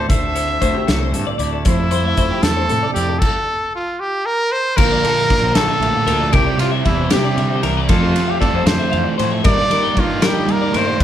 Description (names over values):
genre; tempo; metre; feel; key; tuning
math rock and midwest emo; 77 BPM (dotted quarters); 6/8; straight; F major; A4 = 440 Hz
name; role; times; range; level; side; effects
clear trumpet; melody; 0.0-11.0 s; E4 to E5; -20 LUFS; right 1 dB; none
clean electric guitar; accompaniment; 0.0-11.0 s; A2 to C5; -24 LUFS; right 6 dB; none
twelve-string electric guitar; arpeggios; 0.0-11.0 s; G4 to G5; -23 LUFS; left 6 dB; none
fuzz fingered electric bass; bass; 0.0-11.0 s; Bb1 to G3; -22 LUFS; equal; overdrive
loose indie drum kit; drums; 0.1-11.0 s; crash cymbal, hi-hat, kick drum, ride cymbal, snare drum; -20 LUFS; equal; none
crunchy overdriven guitar; riff; 4.8-11.0 s; G2 to F4; -22 LUFS; right 1 dB; none
room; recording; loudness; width
moderate recital hall reverb, RT60 1.4 s; recorded in a church or concert hall; -14 LUFS; side -10 dB against mid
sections
0.0-4.8 A section; 4.8-11.0 B section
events
stop 3.2-4.8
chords
0.0 Dsus2; 1.7 Fmaj7; 4.8 Bbmaj7; 6.3 Cadd9; 7.9 Fmaj7; 9.4 Ebmaj7/G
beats
| 0.09 0.87 | 1.65 2.43 | 3.21 3.99 | 4.77 5.55 | 6.33 7.11 | 7.89 8.66 | 9.44 10.22 | 11.00